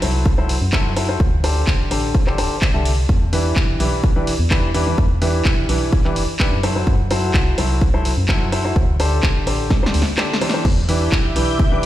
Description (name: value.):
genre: piano house.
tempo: 127 BPM.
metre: 4/4.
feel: straight.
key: E minor.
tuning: A4 = 440 Hz.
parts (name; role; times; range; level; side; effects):
clear grand piano; riff; 0.0-11.9 s; D3 to E5; -21 LUFS; equal; sidechain pumping, low-pass filter, dub echo.
organ-like FM bass; bass; 0.0-11.9 s; D1 to F#2; -20 LUFS; equal; sidechain pumping.
punchy analog drum machine; drums; 0.0-11.9 s; crash cymbal, handclaps, hi-hat, snare drum; -24 LUFS; equal; none.
electronic kick drum; drums; 0.3-11.7 s; none; -18 LUFS; equal; none.
analog string pad; sustained chords; 10.8-11.9 s; E5 to G6; -27 LUFS; left 1 dB; ensemble chorus, phaser, sidechain pumping.
room: little or no reverb.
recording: played on a big sound system in a bare room, stone room reverb.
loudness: -15 LUFS.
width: side -13 dB against mid.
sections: 0.0-11.9 A section.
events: drum fill 9.7-10.7.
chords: 0.0 F#m7b5; 1.2 D7sus4; 3.1 Em7; 6.6 F#m7b5; 8.8 D7sus4; 10.7 Em7.